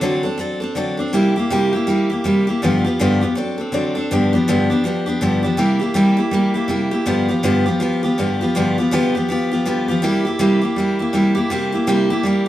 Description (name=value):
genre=rock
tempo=162 BPM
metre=4/4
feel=swing 61% on 8ths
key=unclear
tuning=A4 = 441 Hz
part: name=picked steel-string acoustic guitar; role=solo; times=0.0-12.5 s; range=G2 to A4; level=-16 LUFS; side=equal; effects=none
room=moderate stone room reverb, RT60 1.1 s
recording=band playing live in one room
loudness=-16 LUFS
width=side -13 dB against mid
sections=0.0-4.1 A section; 4.1-12.5 B section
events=none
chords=0.0 D7; 1.1 C7; 2.6 G7; 3.4 D7; 4.1 G7; 5.6 C7; 7.1 G7; 10.0 C7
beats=0.01 0.39 0.76 | 1.13 1.50 1.87 2.24 | 2.62 2.99 3.36 3.73 | 4.10 4.47 4.84 5.21 | 5.58 5.96 6.33 6.70 | 7.07 7.44 7.81 8.18 | 8.55 8.92 9.29 9.66 | 10.03 10.40 10.77 11.14 | 11.51 11.88 12.24